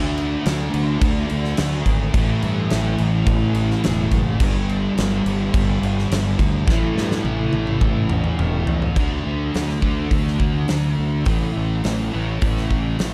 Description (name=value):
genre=rock, shoegaze and dream pop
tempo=105 BPM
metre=4/4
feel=straight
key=unclear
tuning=A4 = 440 Hz
part: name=fuzz guitar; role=riff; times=0.0-13.1 s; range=G2 to D4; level=-24 LUFS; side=equal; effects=distortion, ensemble chorus
part: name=fuzz fingered electric bass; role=bass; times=0.0-13.1 s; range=E1 to G2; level=-26 LUFS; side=equal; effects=overdrive
part: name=huge arena drum kit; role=drums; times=0.2-13.1 s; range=crash cymbal, hi-hat, kick drum, snare drum, toms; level=-25 LUFS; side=equal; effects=none
room=small room ambience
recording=dark, warm production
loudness=-20 LUFS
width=mono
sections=0.0-9.0 A section; 9.0-13.1 B section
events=drum fill 6.7-9.0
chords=0.0 D5; 2.1 A5; 4.4 G5; 6.7 A5; 9.0 D5; 11.3 A5